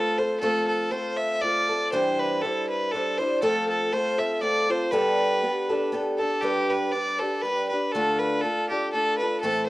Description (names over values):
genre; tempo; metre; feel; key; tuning
celtic folk; 120 BPM; 3/4; swing 54% on 8ths; G mixolydian; A4 = 439 Hz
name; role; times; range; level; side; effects
rich fiddle; melody; 0.0-9.7 s; G4 to E5; -25 LUFS; equal; cassette tape
picked old ladder-braced acoustic guitar; accompaniment; 0.0-9.7 s; A2 to C5; -26 LUFS; equal; cassette tape
room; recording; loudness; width
moderate spring reverb, RT60 1.3 s, small room ambience; home recording on cassette; -22 LUFS; side -18 dB against mid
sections
0.0-6.4 A section; 6.4-9.7 B section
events
none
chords
0.0 F; 1.9 Cadd9; 3.4 F; 4.9 Gadd9; 6.4 G; 7.9 Dm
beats
| 0.42 0.92 1.42 | 1.92 2.42 2.92 | 3.43 3.93 4.43 | 4.93 5.43 5.93 | 6.43 6.93 7.43 | 7.93 8.43 8.93 | 9.42